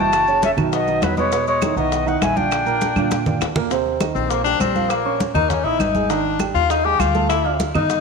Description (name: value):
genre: Afro-Cuban jazz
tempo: 201 BPM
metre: 4/4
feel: straight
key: unclear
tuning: A4 = 440 Hz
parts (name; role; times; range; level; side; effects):
- silver concert flute; melody; 0.0-3.4 s; B4 to A5; -20 LUFS; equal; none
- bright tenor saxophone; second line; 0.0-8.0 s; F#3 to G4; -21 LUFS; left 9 dB; none
- warm baby grand piano; accompaniment; 0.0-8.0 s; Bb2 to F6; -23 LUFS; right 11 dB; none
- upright bass; bass; 0.0-8.0 s; Gb1 to Bb2; -26 LUFS; equal; none
- bongos; percussion; 0.1-8.0 s; none; -29 LUFS; left 12 dB; none
- claves; percussion; 0.1-7.9 s; none; -34 LUFS; right 13 dB; none
- congas; percussion; 0.1-8.0 s; none; -24 LUFS; equal; none
- maracas; percussion; 0.1-8.0 s; none; -38 LUFS; right 14 dB; none
room: wet plate reverb, RT60 2.2 s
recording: 1960s-style stereo with parts hard left and right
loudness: -16 LUFS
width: side -4 dB against mid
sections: 0.0-3.7 A section; 3.7-8.0 B section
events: drum fill 2.8-3.7; tenor saxophone solo 3.7-8.0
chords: 0.1 Gbm7; 0.7 B; 1.3 Emaj7; 2.5 Bb6; 3.7 Eb6; 4.9 Bbm; 5.5 Eb5; 6.1 Ab5; 7.3 Dmadd9